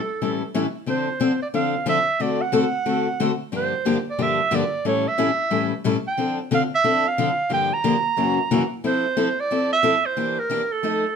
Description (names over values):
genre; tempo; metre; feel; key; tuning
jazz; 181 BPM; 4/4; swing 61% on 8ths; D minor; A4 = 440 Hz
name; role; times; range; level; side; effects
clear clarinet; melody; 0.0-11.2 s; A4 to Bb5; -22 LUFS; right 5 dB; none
picked steel-string acoustic guitar; accompaniment; 0.2-11.0 s; F#2 to A4; -22 LUFS; left 4 dB; none
room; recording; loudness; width
moderate studio reverb, RT60 0.7 s; none; -19 LUFS; side -6 dB against mid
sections
0.9-11.2 A section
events
none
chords
0.0 A7; 0.9 Dm7; 2.2 D7; 3.5 Gm7; 4.8 A7; 6.2 Dm7; 7.5 Gm7; 8.2 F#7; 8.8 Fmaj7; 10.2 Em7b5